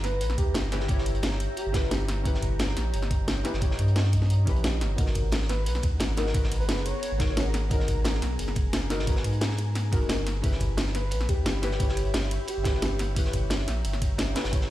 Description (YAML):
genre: liquid drum and bass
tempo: 176 BPM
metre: 4/4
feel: straight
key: unclear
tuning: A4 = 440 Hz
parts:
  - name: airy dreamy lead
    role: melody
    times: 0.0-1.9, 5.5-7.3, 10.9-12.8 s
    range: G4 to C#5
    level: -35 LUFS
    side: right 1 dB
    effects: chorus, tape echo
  - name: deep mellow chord stab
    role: accompaniment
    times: 0.0-14.7 s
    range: B3 to C#5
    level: -35 LUFS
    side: left 1 dB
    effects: chorus, tape echo
  - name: glassy FM pad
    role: sustained chords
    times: 0.0-14.7 s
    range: B3 to B5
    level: -38 LUFS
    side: left 1 dB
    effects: ensemble chorus, built-in reverb, sidechain pumping
  - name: warm sub bass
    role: bass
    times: 0.0-14.7 s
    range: D#1 to G#2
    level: -28 LUFS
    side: equal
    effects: none
  - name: crunchy breakbeat drum kit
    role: drums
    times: 0.0-14.7 s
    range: hi-hat, snare drum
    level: -38 LUFS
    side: equal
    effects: high-pass filter on hats, high-pass filter on snare, high-pass filter on room
  - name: garage drum kit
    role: drums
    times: 0.0-14.6 s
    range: hi-hat, ride cymbal, snare drum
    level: -32 LUFS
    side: equal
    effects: none
  - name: electronic kick drum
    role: drums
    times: 0.4-14.6 s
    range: none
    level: -27 LUFS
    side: equal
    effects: none
room: light reverb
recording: played on a big sound system in a bare room, stone room reverb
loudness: -24 LUFS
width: side -14 dB against mid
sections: 0.0-14.7 A section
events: none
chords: 0.0 D#7b9b13/G; 5.0 G#m9; 10.3 D#7b9b13/G (rootless)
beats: 0.21 0.55 | 0.89 1.23 1.57 1.92 | 2.25 2.60 2.94 3.28 | 3.62 3.96 4.30 4.64 | 4.98 5.32 5.67 6.00 | 6.35 6.69 7.03 7.37 | 7.71 8.05 8.39 8.73 | 9.07 9.41 9.76 10.10 | 10.44 10.78 11.12 11.46 | 11.80 12.14 12.48 12.82 | 13.16 13.51 13.85 14.19 | 14.53